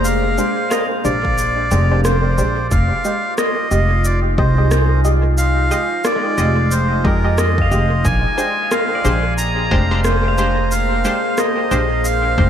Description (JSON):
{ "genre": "ambient dub", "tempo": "90 BPM", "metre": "4/4", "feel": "swing 60% on 16ths", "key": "unclear", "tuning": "A4 = 440 Hz", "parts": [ { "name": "melodica", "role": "melody", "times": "0.0-12.5 s", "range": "Bb4 to Bb5", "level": "-20 LUFS", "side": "equal", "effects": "dub echo" }, { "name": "deep dark ambient pad", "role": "sustained chords", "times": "0.0-12.5 s", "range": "Bb3 to Ab5", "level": "-25 LUFS", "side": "equal", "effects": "chorus, built-in reverb" }, { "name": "pedal steel guitar", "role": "arpeggios", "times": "0.0-12.5 s", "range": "Ab3 to F5", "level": "-30 LUFS", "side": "right 1 dB", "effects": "dub echo" }, { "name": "upright bass", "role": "bass", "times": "0.0-12.5 s", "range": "F1 to F2", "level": "-17 LUFS", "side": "equal", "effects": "none" }, { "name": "electronic shaker and rim click", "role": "drums", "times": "0.0-12.2 s", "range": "none", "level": "-24 LUFS", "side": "equal", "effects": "overdrive, dub echo" }, { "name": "filtered dub chord stab", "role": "stabs", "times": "0.4-12.5 s", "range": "Ab3 to Eb5", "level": "-24 LUFS", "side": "left 1 dB", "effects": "chorus, dub echo" }, { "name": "electronic kick drum", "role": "drums", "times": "1.2-12.5 s", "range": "none", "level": "-21 LUFS", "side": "equal", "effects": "overdrive" } ], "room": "light reverb", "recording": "none", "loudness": "-14 LUFS", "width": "side -9 dB against mid", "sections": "0.0-12.5 A section", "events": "kick drops out 1.4-2.7", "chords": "0.0 Bb13; 2.7 Fm9; 8.0 Bb13", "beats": "| 0.05 0.71 1.38 2.05 | 2.71 3.38 4.05 4.71 | 5.38 6.05 6.71 7.38 | 8.05 8.71 9.38 10.05 | 10.71 11.38 12.05" }